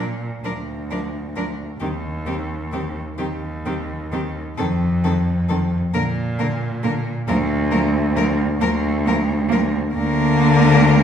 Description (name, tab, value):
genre	classical, lyrical piece for cello ensemble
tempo	44 BPM (dotted quarters)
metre	6/8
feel	uneven beats, rubato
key	Bb major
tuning	A4 = 440 Hz
part	warm cello	melody	0.0-11.0 s	G4 to Bb4	-27 LUFS	left 6 dB	none
part	rich cello	second line	0.0-11.0 s	Bb3 to D4	-25 LUFS	right 5 dB	none
part	dark cello	accompaniment	0.0-11.0 s	D3 to F3	-22 LUFS	left 3 dB	none
part	rich cello	bass	0.0-11.0 s	D2 to Bb2	-21 LUFS	right 1 dB	none
room	wet recital hall reverb, RT60 1.4 s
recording	heard from further back in the room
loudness	-18 LUFS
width	side -8 dB against mid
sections	0.0-11.0 A section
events	none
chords	0.4 N.C.; 4.6 F7(no3); 5.9 Bb; 7.3 Bb/D